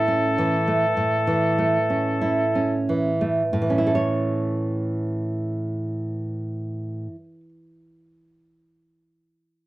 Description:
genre	romantic duo for oboe and classical guitar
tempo	44-52 BPM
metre	4/4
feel	rubato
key	A major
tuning	A4 = 440 Hz
part	clear oboe	melody	0.0-2.9 s	A4	-25 LUFS	left 4 dB	none
part	nylon-string guitar	accompaniment	0.0-7.5 s	A2 to C#5	-22 LUFS	right 1 dB	none
room	light reverb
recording	dry, close 1970s-style studio recording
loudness	-21 LUFS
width	side -17 dB against mid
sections	0.0-3.5 A section; 3.5-8.6 B section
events	slowing down 0.0-3.5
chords	0.0 A

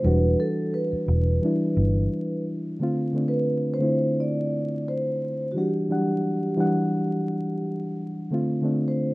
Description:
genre	hip hop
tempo	87 BPM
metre	4/4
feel	swing 57% on 16ths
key	E minor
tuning	A4 = 440 Hz
part	vibraphone with soft mallets	melody	0.0-9.1 s	F#4 to D5	-28 LUFS	right 1 dB	none
part	mellow reed electric piano	accompaniment	0.0-9.1 s	D3 to F#5	-24 LUFS	equal	none
part	vintage muted fingered electric bass	bass	0.0-2.1 s	E1 to G1	-21 LUFS	equal	none
room	light reverb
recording	rough home demo mix, vinyl crackle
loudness	-22 LUFS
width	side -21 dB against mid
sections	0.0-2.8 A section; 2.8-9.1 B section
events	none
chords	0.0 Em9; 2.8 F6; 5.6 Em9; 8.3 F6

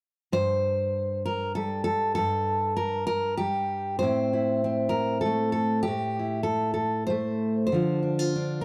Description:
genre	folk, solo fingerstyle acoustic guitar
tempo	98 BPM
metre	3/4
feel	straight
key	unclear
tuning	A4 = 440 Hz
part	fingerpicked steel-string acoustic guitar	solo	0.3-8.6 s	G2 to C5	-27 LUFS	equal	none
room	little or no reverb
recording	dry, close 1970s-style studio recording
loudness	-27 LUFS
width	mono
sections	0.3-8.6 A section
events	none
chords	0.3 N.C.; 4.0 Am7; 7.7 Dm

